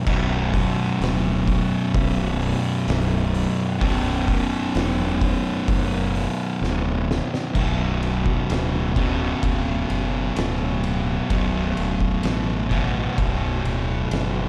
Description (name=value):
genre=stoner and doom metal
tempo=64 BPM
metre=4/4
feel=straight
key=B minor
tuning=A4 = 440 Hz
part: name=fuzz guitar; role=riff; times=0.0-14.5 s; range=B1 to B2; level=-25 LUFS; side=equal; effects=distortion
part: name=fuzz fingered electric bass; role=bass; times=0.1-14.5 s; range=B0 to A1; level=-28 LUFS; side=equal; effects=overdrive
part: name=oversized low-tuned drum kit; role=drums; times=0.1-14.3 s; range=crash cymbal, hi-hat, kick drum, ride cymbal, snare drum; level=-29 LUFS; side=equal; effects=none
room=studio reverb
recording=dark, warm production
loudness=-23 LUFS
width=mono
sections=0.0-7.6 A section; 7.6-14.5 B section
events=drum fill 6.6-7.6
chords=0.0 Bm